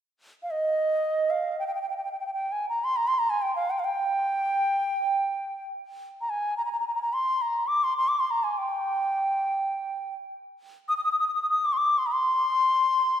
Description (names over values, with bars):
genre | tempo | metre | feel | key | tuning
arabic | free time | none | none | G maqam kurd | A4 = 441 Hz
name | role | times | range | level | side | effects
bright reedy bansuri | solo | 0.4-13.2 s | Eb5 to Eb6 | -24 LUFS | equal | none
room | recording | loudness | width
wet concert hall reverb, RT60 2.4 s | recorded in a church or concert hall | -24 LUFS | side -10 dB against mid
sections
0.0-13.2 A section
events
none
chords
none